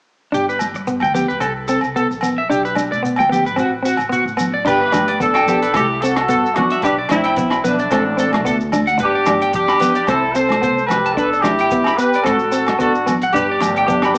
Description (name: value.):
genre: highlife guitar band.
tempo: 111 BPM.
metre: 4/4.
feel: swing 54% on 16ths.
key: G major.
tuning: A4 = 440 Hz.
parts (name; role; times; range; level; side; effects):
clean electric guitar; accompaniment; 0.3-14.2 s; B3 to D4; -20 LUFS; equal; cassette tape.
electric guitar at the edge of break-up; arpeggios; 0.3-14.1 s; F#4 to B5; -20 LUFS; equal; cassette tape, tape echo.
upright bass; bass; 0.3-14.2 s; E1 to B2; -29 LUFS; equal; none.
shekere; percussion; 0.3-14.2 s; none; -35 LUFS; equal; none.
agogo bells; percussion; 0.6-14.2 s; none; -25 LUFS; equal; none.
congas; percussion; 0.6-14.0 s; none; -26 LUFS; equal; none.
warm horn section; melody; 4.7-14.2 s; A3 to C5; -16 LUFS; equal; cassette tape.
compact cocktail drum kit; drums; 4.7-14.2 s; crash cymbal, hi-hat, kick drum, rim click; -28 LUFS; equal; cassette tape.
room: moderate spring reverb, RT60 1.7 s.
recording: home recording on cassette, small speaker sound.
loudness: -14 LUFS.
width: side -35 dB against mid.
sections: 0.3-4.7 A section; 4.7-14.2 B section.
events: none.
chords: 0.3 G; 1.4 C5; 2.5 G/B; 3.6 D/A (rootless); 4.7 G; 5.8 C6; 6.8 G/B (rootless); 7.9 D5/A; 9.0 G; 10.1 C6; 11.2 G/B; 12.3 D/A; 13.3 G.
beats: | 0.34 0.88 1.42 1.96 | 2.50 3.04 3.58 4.13 | 4.67 5.21 5.75 6.29 | 6.83 7.38 7.92 8.46 | 9.00 9.54 10.08 10.63 | 11.17 11.71 12.25 12.80 | 13.34 13.88.